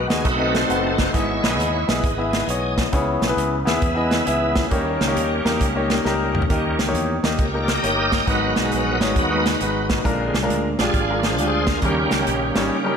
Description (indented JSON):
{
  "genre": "uptempo gospel",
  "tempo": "135 BPM",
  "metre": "4/4",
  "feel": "swing 66% on 8ths",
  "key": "unclear",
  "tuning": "A4 = 440 Hz",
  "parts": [
    { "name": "clear concert grand piano", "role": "accompaniment", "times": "0.0-13.0 s", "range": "G#2 to F#5", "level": "-22 LUFS", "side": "left 2 dB", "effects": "slapback echo" },
    { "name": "bright tonewheel organ", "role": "sustained chords", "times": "0.0-13.0 s", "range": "C#3 to F#5", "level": "-24 LUFS", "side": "right 2 dB", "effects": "slow rotary speaker, chorus vibrato" },
    { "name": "warm French horn section", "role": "sustained chords", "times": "0.0-13.0 s", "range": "B2 to D#5", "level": "-34 LUFS", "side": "equal", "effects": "none" },
    { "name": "modern bright fingered electric bass", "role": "bass", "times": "0.0-12.7 s", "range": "F#1 to E2", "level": "-27 LUFS", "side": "equal", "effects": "none" },
    { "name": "natural country drum kit", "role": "drums", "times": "0.1-12.6 s", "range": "hi-hat, kick drum, snare drum, toms", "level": "-23 LUFS", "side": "right 1 dB", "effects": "none" }
  ],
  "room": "moderate lush hall reverb, RT60 1.7 s, studio reverb",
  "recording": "big arena sound",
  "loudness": "-18 LUFS",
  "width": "side -7 dB against mid",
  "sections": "0.0-13.0 A section",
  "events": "tonewheel organ solo 0.0-13.0; drum fill 6.1-6.5",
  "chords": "0.3 B7b9; 1.1 Emaj7/G#; 2.9 C#m7; 4.7 D#7; 8.3 G#m7; 10.1 A#7; 11.8 D#7",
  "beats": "0.26 0.70 | 1.15 1.59 2.04 2.48 | 2.93 3.38 3.82 4.27 | 4.71 5.16 5.61 6.05 | 6.50 6.94 7.39 7.83 | 8.28 8.72 9.17 9.61 | 10.05 10.50 10.94 11.38 | 11.83 12.27 12.71"
}